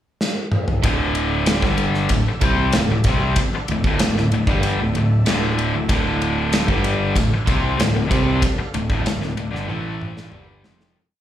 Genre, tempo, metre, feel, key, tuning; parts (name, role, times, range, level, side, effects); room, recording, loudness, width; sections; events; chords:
hard rock; 95 BPM; 4/4; straight; D minor; A4 = 439 Hz
gated 80s drum kit; drums; 0.2-11.0 s; kick drum, ride cymbal, snare drum, toms; -21 LUFS; equal
overdriven semi-hollow guitar; riff; 0.8-11.0 s; D2 to C4; -25 LUFS; right 7 dB; slapback echo
tight distorted guitar; riff; 0.8-11.0 s; D2 to C4; -22 LUFS; left 4 dB; distortion
modern bright picked electric bass; bass; 0.8-10.9 s; D1 to C2; -24 LUFS; equal
overdriven tonewheel organ; sustained chords; 0.9-11.0 s; A3 to F5; -35 LUFS; right 2 dB
light reverb; live gig heard through the venue's PA, club reverb; -17 LUFS; side -11 dB against mid
0.0-0.8 pickup bar; 0.8-11.0 riff
drum fill 0.2-0.8, 9.7-11.0; fade-out 8.4-11.0
0.0 N.C.; 0.8 Dm; 9.7 A5; 10.3 Dm